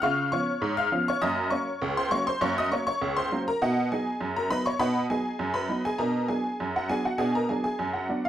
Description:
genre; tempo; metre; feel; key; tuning
ragtime piano; 100 BPM; 2/4; straight; unclear; A4 = 442 Hz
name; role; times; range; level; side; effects
honky-tonk upright piano; solo; 0.0-8.3 s; Db2 to F6; -24 LUFS; equal; none
room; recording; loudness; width
moderate studio reverb, RT60 0.6 s; none; -24 LUFS; side -11 dB against mid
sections
0.0-8.3 A section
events
none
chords
0.0 Db7; 1.2 Gb; 3.6 B; 6.0 Bm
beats
| 0.02 0.62 | 1.22 1.82 | 2.42 3.02 | 3.62 4.21 | 4.81 5.41 | 6.00 6.60 | 7.20 7.79

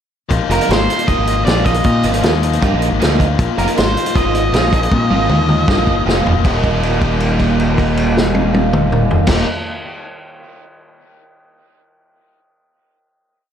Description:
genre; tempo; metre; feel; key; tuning
indie rock; 157 BPM; 4/4; straight; Eb major; A4 = 440 Hz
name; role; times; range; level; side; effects
biting overdriven guitar; riff; 0.3-9.5 s; Eb2 to F4; -19 LUFS; left 7 dB; none
growling fingered electric bass; bass; 0.3-9.4 s; Eb1 to Bb2; -18 LUFS; equal; overdrive
vintage drum kit; drums; 0.3-9.4 s; crash cymbal, hi-hat, kick drum, snare drum, toms; -17 LUFS; equal; none
octave-fuzz lead guitar; melody; 0.5-6.0 s; Bb4 to Eb5; -21 LUFS; right 1 dB; distortion, ping-pong delay
biting overdriven guitar; riff; 0.5-9.5 s; Eb2 to F4; -20 LUFS; right 8 dB; ensemble chorus, ping-pong delay
room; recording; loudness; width
moderate plate reverb, RT60 1.0 s, small room ambience; dreamy mix soaked in reverb; -12 LUFS; side -9 dB against mid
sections
0.3-6.4 pre-chorus; 6.4-9.5 final chord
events
drum fill 4.9-6.4; held note 6.4-9.3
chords
0.3 Bb7sus4; 6.4 Eb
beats
| 0.31 0.70 1.08 1.47 | 1.85 2.24 2.62 3.00 | 3.39 3.77 4.15 4.54 | 4.92 5.30 5.68 6.06 | 6.44 6.83 7.21 7.59 | 7.97 8.36 8.74 9.12

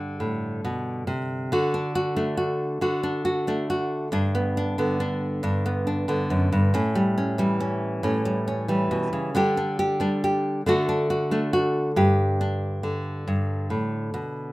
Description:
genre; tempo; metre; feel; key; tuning
folk, solo fingerstyle acoustic guitar; 46 BPM (dotted quarters); 6/8; straight; G major; A4 = 439 Hz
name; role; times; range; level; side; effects
nylon-string guitar; solo; 0.0-14.5 s; F#2 to G4; -22 LUFS; equal; none
room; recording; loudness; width
moderate studio ambience, RT60 0.5 s; rough home demo mix; -22 LUFS; side -19 dB against mid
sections
0.0-1.5 A section; 1.5-12.0 B section; 12.0-14.5 A section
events
none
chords
0.0 G; 1.5 D; 4.1 G; 6.7 A7; 9.3 Dsus4; 10.6 D; 12.0 G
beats
0.20 | 1.51 2.81 | 4.12 5.43 | 6.73 8.04 | 9.34 10.65 | 11.95 13.26

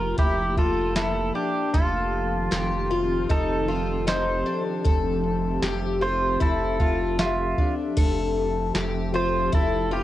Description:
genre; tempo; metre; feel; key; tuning
dream pop; 77 BPM; 4/4; straight; F major; A4 = 441 Hz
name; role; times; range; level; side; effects
pedal steel guitar; melody; 0.0-10.0 s; F4 to C5; -27 LUFS; right 2 dB; cassette tape, tape echo, plate reverb
ethereal airy pad; sustained chords; 0.0-10.0 s; Eb3 to E5; -30 LUFS; equal; ensemble chorus, built-in reverb, cassette tape
picked twelve-string acoustic guitar; arpeggios; 0.0-10.0 s; D4 to E5; -27 LUFS; left 5 dB; wide subtle chorus, cassette tape, tape echo, plate reverb
saturated sub bass; bass; 0.0-10.0 s; F1; -30 LUFS; right 1 dB; none
soft vintage rhythm box; drums; 0.2-9.7 s; crash cymbal, hi-hat, kick drum, snare drum; -24 LUFS; right 1 dB; cassette tape
room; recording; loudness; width
moderate studio reverb, RT60 0.6 s; home recording on cassette; -21 LUFS; side -14 dB against mid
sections
0.0-8.0 A section; 8.0-10.0 A section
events
none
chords
0.0 Gm7/F; 1.7 F7; 4.9 Fmaj9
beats
0.18 0.96 | 1.74 2.52 3.30 4.08 | 4.85 5.63 6.41 7.19 | 7.97 8.75 9.53

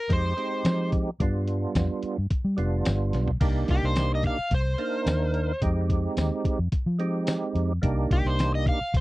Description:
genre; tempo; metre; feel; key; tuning
straight-eighth soul blues; 109 BPM; 4/4; swing 53% on 16ths; C minor; A4 = 440 Hz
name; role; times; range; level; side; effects
overdriven slide guitar; melody; 0.0-9.0 s; G4 to F5; -29 LUFS; left 1 dB; none
percussive tonewheel organ; accompaniment; 0.1-8.8 s; G3 to Bb4; -29 LUFS; right 3 dB; overdrive, chorus vibrato, slow rotary speaker
vintage muted fingered electric bass; bass; 0.1-9.0 s; F1 to G3; -26 LUFS; equal; none
lo-fi sampler-style drum kit; drums; 0.1-9.0 s; crash cymbal, hi-hat, kick drum, snare drum, tambourine, toms; -26 LUFS; equal; none
room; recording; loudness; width
little or no reverb; dry, close 1970s-style studio recording; -23 LUFS; side -18 dB against mid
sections
0.0-3.4 A section; 3.4-9.0 B section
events
drum fill 3.1; electric slide guitar solo 3.4-9.0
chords
0.1 Fm7; 1.2 G7; 3.4 Cm7; 5.6 Fm7; 7.8 Cm7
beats
0.10 0.65 | 1.20 1.76 2.31 2.86 | 3.42 3.97 4.52 5.07 | 5.62 6.18 6.73 7.28 | 7.83 8.39 8.94

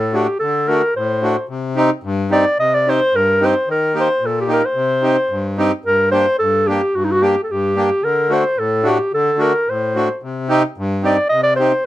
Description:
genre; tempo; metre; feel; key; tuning
klezmer; 110 BPM; 2/4; straight; C dorian sharp4; A4 = 441 Hz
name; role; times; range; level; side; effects
mellow clarinet; melody; 0.0-11.9 s; Eb4 to Eb5; -16 LUFS; equal; none
accordion; accompaniment; 0.0-11.7 s; G2 to G4; -18 LUFS; equal; none
room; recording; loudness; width
light reverb; close, detailed microphones; -14 LUFS; side -14 dB against mid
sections
0.0-5.8 A section; 5.8-11.9 A section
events
none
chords
0.0 D; 1.5 Cm; 3.7 Eb; 4.8 Cm; 5.8 Gm; 8.0 D; 10.2 Cm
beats
| 0.41 0.95 | 1.50 2.04 | 2.58 3.13 | 3.67 4.22 | 4.76 5.31 | 5.85 6.39 | 6.94 7.49 | 8.03 8.58 | 9.12 9.67 | 10.21 10.76 | 11.30 11.85

